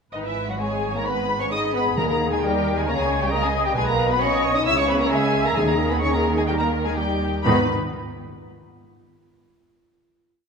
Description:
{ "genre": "quick classical-period movement for symphony orchestra", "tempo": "131 BPM", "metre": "4/4", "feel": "rubato", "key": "G# minor", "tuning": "A4 = 440 Hz", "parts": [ { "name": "muted chamber violin section", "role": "melody", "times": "0.1-7.7 s", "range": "D#5 to E6", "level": "-26 LUFS", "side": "left 1 dB", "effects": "none" }, { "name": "muted symphonic viola section", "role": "accompaniment", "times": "0.1-7.7 s", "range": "D#3 to E5", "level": "-26 LUFS", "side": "left 1 dB", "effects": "none" }, { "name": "muted chamber cello section", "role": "bass", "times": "0.1-7.7 s", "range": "G#2 to D#3", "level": "-28 LUFS", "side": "right 3 dB", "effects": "none" }, { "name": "muted chamber double bass section", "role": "bass", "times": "0.1-7.7 s", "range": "G#1 to D#2", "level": "-28 LUFS", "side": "right 3 dB", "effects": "none" }, { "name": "muted chamber violin section", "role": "second line", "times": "0.2-7.7 s", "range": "D#4 to E5", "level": "-28 LUFS", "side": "left 2 dB", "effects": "none" }, { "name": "dark French horn section", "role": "sustained chords", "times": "0.2-7.7 s", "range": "D#3 to E4", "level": "-26 LUFS", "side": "left 2 dB", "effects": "none" }, { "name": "timpani", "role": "percussion", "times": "2.0-2.6, 5.6-7.7 s", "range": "G#2 to D#3", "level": "-32 LUFS", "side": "equal", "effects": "none" } ], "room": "wet concert hall reverb, RT60 2.2 s", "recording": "minimal, uncompressed stereo recording", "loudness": "-19 LUFS", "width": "side -5 dB against mid", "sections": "0.1-7.5 A section; 7.5-9.3 final chord", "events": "none", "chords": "0.1 G#m; 2.0 D#5; 2.9 G#sus24/C#; 3.8 Bmaj9; 4.7 C#m; 5.6 D#sus4; 7.5 G#5" }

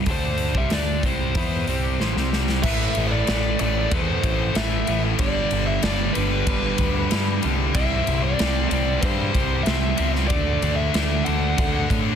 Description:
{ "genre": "hard rock", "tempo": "94 BPM", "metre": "4/4", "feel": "straight", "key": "A minor", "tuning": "A4 = 440 Hz", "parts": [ { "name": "biting overdriven guitar", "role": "riff", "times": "0.0-12.2 s", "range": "G2 to E4", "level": "-29 LUFS", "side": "right 14 dB", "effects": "none" }, { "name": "scooped high-gain guitar", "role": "riff", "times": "0.0-12.2 s", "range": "G2 to E4", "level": "-27 LUFS", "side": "left 14 dB", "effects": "distortion" }, { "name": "growling picked electric bass", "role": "bass", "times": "0.0-12.2 s", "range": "G1 to A2", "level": "-25 LUFS", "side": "equal", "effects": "overdrive" }, { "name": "biting lead guitar", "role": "melody", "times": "0.1-11.9 s", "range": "B4 to F#5", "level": "-28 LUFS", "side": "equal", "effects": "overdrive, slapback echo" }, { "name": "big rock drum kit", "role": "drums", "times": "0.1-12.1 s", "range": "crash cymbal, hi-hat, kick drum, ride cymbal, snare drum", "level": "-24 LUFS", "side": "equal", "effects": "none" } ], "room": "light reverb", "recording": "dense, heavily limited modern master", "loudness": "-19 LUFS", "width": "side -8 dB against mid", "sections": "0.0-2.6 A section; 2.6-12.2 B section", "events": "drum fill 2.0-2.6", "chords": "0.0 Am; 5.2 G; 7.8 C5; 10.3 D" }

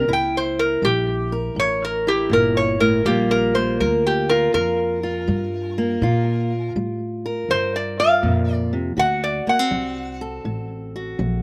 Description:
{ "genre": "acoustic country blues, solo or duo", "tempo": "81 BPM", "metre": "4/4", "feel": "swing 66% on 8ths", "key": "G minor", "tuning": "A4 = 440 Hz", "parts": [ { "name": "metal-body resonator slide guitar", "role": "melody", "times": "0.0-10.2 s", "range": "G4 to G5", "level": "-22 LUFS", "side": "equal", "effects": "none" }, { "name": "fingerpicked steel-string acoustic guitar", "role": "accompaniment", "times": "0.0-11.4 s", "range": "G2 to Bb4", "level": "-26 LUFS", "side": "equal", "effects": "none" }, { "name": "upright bass", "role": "bass", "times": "0.0-11.4 s", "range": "G1 to Bb2", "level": "-29 LUFS", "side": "equal", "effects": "none" } ], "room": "little or no reverb", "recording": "recorded outdoors, with no room sound", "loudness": "-21 LUFS", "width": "mono", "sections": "0.0-11.4 A section", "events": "none", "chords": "0.1 C#dim7; 3.1 Gm9; 9.0 D7" }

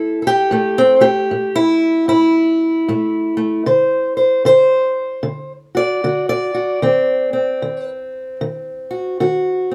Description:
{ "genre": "acoustic country blues, solo or duo", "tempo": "76 BPM", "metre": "4/4", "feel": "swing 63% on 8ths", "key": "unclear", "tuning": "A4 = 437 Hz", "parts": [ { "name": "fingerpicked steel-string acoustic guitar", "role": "solo", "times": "0.0-9.7 s", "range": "A2 to D5", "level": "-16 LUFS", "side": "equal", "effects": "none" } ], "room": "moderate studio reverb, RT60 0.7 s", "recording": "none", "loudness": "-16 LUFS", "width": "mono", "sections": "0.0-9.7 A section", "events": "steel-string acoustic guitar solo 0.0-9.7", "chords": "0.0 A7(no3); 3.7 D7; 6.8 D#m6" }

